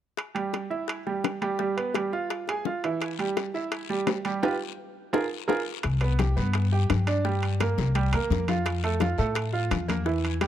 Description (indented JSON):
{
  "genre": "latin, salsa",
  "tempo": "170 BPM",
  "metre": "4/4",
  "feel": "straight",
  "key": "C major",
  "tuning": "A4 = 440 Hz",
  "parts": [
    { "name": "bongos", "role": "percussion", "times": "0.2-10.5 s", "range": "none", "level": "-33 LUFS", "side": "left 14 dB", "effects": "none" },
    { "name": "timbales", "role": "percussion", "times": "0.2-10.5 s", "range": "none", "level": "-33 LUFS", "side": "right 3 dB", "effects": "none" },
    { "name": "bright baby grand piano", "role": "accompaniment", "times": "0.3-10.5 s", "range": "E3 to Ab5", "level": "-28 LUFS", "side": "right 4 dB", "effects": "none" },
    { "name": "guiro", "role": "percussion", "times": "3.0-10.5 s", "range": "none", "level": "-42 LUFS", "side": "left 17 dB", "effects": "none" },
    { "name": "upright bass", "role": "bass", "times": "5.8-10.5 s", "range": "C2 to A2", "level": "-25 LUFS", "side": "left 1 dB", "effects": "none" },
    { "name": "congas", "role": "percussion", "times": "5.8-10.5 s", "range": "none", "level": "-31 LUFS", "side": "left 6 dB", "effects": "none" }
  ],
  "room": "small room ambience",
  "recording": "dry, close 1970s-style studio recording",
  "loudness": "-24 LUFS",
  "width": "side -11 dB against mid",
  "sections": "0.2-5.8 A section; 5.8-10.5 B section",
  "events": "band accent 4.4-5.8; drum fill 5.1-5.8",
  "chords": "0.2 Em/G; 1.6 G7; 2.3 Fmmaj7; 3.0 Em; 3.7 Em/G; 4.4 G7; 5.1 Bb5; 5.8 Csus2; 7.2 Gm; 8.0 C7; 8.7 F"
}